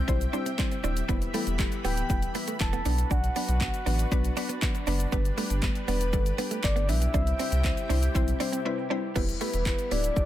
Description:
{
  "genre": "dance-pop",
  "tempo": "119 BPM",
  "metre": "4/4",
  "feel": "straight",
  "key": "E minor",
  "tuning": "A4 = 440 Hz",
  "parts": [
    { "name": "lush unison pad", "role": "sustained chords", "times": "0.0-10.3 s", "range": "C3 to B5", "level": "-36 LUFS", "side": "left 1 dB", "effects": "chorus, sidechain pumping" },
    { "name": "mallet-like synth pluck", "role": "accompaniment", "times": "0.1-10.3 s", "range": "F#3 to D5", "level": "-34 LUFS", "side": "left 3 dB", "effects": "chorus, sidechain pumping, analog delay" },
    { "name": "direct-recorded clean electric guitar", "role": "riff", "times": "0.1-10.2 s", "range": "A3 to D4", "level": "-36 LUFS", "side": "right 7 dB", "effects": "analog chorus, analog delay" },
    { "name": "warm sub bass", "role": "bass", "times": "0.1-10.3 s", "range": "D1 to C2", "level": "-27 LUFS", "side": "equal", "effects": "sidechain pumping" },
    { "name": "deep house drum kit", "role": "drums", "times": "0.1-10.3 s", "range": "crash cymbal, handclaps, hi-hat, kick drum, shaker, snare drum", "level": "-30 LUFS", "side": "equal", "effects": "none" },
    { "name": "group handclap", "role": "percussion", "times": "1.6-9.8 s", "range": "none", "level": "-45 LUFS", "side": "right 6 dB", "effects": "none" },
    { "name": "soft octave-layered synth lead", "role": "melody", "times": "1.8-10.3 s", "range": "B4 to A5", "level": "-33 LUFS", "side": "left 1 dB", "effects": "chorus, analog delay" }
  ],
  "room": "light reverb",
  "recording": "echo-heavy mix",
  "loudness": "-25 LUFS",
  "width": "side -13 dB against mid",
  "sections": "0.0-9.2 A section; 9.2-10.3 B section",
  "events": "break 8.7-9.2",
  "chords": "0.0 C; 1.1 Em; 2.9 Bm; 5.1 G; 7.1 C; 9.2 Em"
}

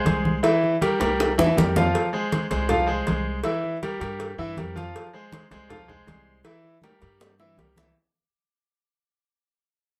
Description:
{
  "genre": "latin, salsa",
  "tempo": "160 BPM",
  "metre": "4/4",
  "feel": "straight",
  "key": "F harmonic minor",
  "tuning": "A4 = 440 Hz",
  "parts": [
    { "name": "bright concert grand piano", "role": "accompaniment", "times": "0.0-7.9 s", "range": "E3 to F5", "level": "-26 LUFS", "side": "equal", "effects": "none" },
    { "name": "upright bass", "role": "bass", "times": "0.1-7.9 s", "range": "C2 to G2", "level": "-31 LUFS", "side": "equal", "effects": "none" },
    { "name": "congas", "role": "percussion", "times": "0.1-8.0 s", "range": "none", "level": "-30 LUFS", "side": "equal", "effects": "none" },
    { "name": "cowbell and bongos", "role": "percussion", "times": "0.1-8.0 s", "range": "none", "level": "-30 LUFS", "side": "equal", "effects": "none" }
  ],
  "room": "moderate studio reverb, RT60 0.6 s",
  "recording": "none",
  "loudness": "-24 LUFS",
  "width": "mono",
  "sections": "0.0-8.0 A section",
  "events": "fade-out 0.0-8.0; drum fill 1.0-1.9, 6.8-8.0",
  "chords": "0.4 C7; 1.9 Fm; 3.5 Edim; 5.0 Fm; 6.5 C7"
}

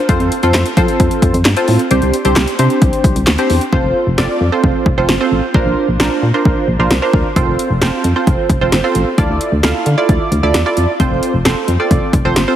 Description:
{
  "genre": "synth-pop",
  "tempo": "132 BPM",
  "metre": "4/4",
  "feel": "straight",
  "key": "F major",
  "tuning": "A4 = 440 Hz",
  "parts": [
    { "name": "funky polysynth comp", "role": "accompaniment", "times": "0.1-12.6 s", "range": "C4 to F5", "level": "-15 LUFS", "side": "right 2 dB", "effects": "chorus" },
    { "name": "solid FM bass", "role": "bass", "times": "0.1-12.5 s", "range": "F1 to F3", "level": "-15 LUFS", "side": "equal", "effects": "none" },
    { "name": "punchy analog drum machine", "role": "drums", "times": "0.1-12.5 s", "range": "handclaps, hi-hat, kick drum, snare drum", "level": "-16 LUFS", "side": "equal", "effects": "overdrive" }
  ],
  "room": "moderate lush hall reverb, RT60 2.5 s",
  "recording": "heavily compressed radio sound",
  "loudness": "-11 LUFS",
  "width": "side -11 dB against mid",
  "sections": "0.0-3.7 A section; 3.7-12.6 B section",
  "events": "none",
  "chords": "0.1 F; 1.9 Csus2; 3.7 F; 5.5 Bbadd9; 7.4 F; 9.2 Dmadd9; 11.0 F"
}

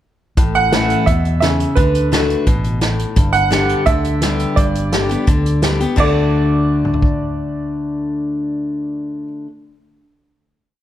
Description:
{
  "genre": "honky-tonk and classic country",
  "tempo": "171 BPM",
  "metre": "4/4",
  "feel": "straight",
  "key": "D major",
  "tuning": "A4 = 439 Hz",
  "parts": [
    { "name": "picked steel-string acoustic guitar", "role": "accompaniment", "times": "0.4-9.5 s", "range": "G2 to G4", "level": "-19 LUFS", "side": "left 3 dB", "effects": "none" },
    { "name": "vintage muted fingered electric bass", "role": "bass", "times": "0.4-9.2 s", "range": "G1 to E2", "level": "-20 LUFS", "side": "equal", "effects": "none" },
    { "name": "unplugged drum kit", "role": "drums", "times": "0.4-7.1 s", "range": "crash cymbal, hi-hat, kick drum, snare drum, toms", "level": "-18 LUFS", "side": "equal", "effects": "none" },
    { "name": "bright upright piano", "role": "second line", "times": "0.6-9.2 s", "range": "B4 to F#5", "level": "-20 LUFS", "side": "right 6 dB", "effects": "none" }
  ],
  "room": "moderate recital hall reverb, RT60 1.5 s",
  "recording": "dark, warm production",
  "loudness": "-14 LUFS",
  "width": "side -12 dB against mid",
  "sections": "0.4-6.0 verse; 6.0-8.8 final chord",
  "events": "upright piano solo 0.4-6.0",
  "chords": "0.4 A; 1.8 D; 3.2 G; 6.0 D"
}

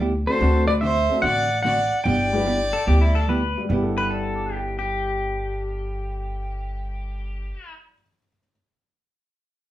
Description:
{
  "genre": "country, western swing",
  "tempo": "146 BPM",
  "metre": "4/4",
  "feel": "swing 67% on 8ths",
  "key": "G major",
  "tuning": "A4 = 440 Hz",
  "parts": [
    { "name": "hollow-body jazz guitar", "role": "accompaniment", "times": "0.0-7.6 s", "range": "D3 to A4", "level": "-27 LUFS", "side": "right 3 dB", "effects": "none" },
    { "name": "upright bass", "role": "bass", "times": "0.0-7.5 s", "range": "G1 to D2", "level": "-24 LUFS", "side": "equal", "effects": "none" },
    { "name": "pedal steel guitar", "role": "melody", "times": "0.3-3.2 s", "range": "C5 to G5", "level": "-23 LUFS", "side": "equal", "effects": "none" },
    { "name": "clear fiddle", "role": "second line", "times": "0.3-3.2 s", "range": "A4 to D5", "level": "-27 LUFS", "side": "equal", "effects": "none" },
    { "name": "warm upright piano", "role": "accompaniment", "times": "0.3-8.5 s", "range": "G2 to D7", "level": "-30 LUFS", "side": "left 2 dB", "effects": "none" },
    { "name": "pedal steel guitar", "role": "second line", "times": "2.7-7.7 s", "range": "E4 to B4", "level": "-28 LUFS", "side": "left 2 dB", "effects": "none" }
  ],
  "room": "wet studio reverb, RT60 0.6 s",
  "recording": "band playing live in one room",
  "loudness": "-20 LUFS",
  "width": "side -14 dB against mid",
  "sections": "0.4-3.7 A section; 3.7-7.0 B section",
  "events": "none",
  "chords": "0.4 D7; 2.1 G6"
}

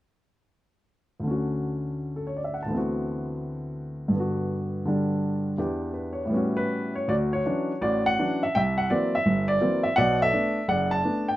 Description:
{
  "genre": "solo jazz",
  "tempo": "167 BPM",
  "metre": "4/4",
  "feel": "swing 66% on 8ths, rubato",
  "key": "D major",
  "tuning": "A4 = 441 Hz",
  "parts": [
    { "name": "warm grand piano", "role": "solo", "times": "1.2-11.4 s", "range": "F#1 to A5", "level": "-24 LUFS", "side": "equal", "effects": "none" }
  ],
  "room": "light reverb",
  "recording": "close, detailed microphones",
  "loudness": "-24 LUFS",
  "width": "side -15 dB against mid",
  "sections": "1.3-7.1 A section; 7.1-11.4 B section",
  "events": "none",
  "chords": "1.3 Dmaj7; 2.7 D13; 4.1 Gmaj7; 5.6 Em7; 6.3 A13; 7.1 Dmaj9; 8.5 C7#11; 10.0 Bm7"
}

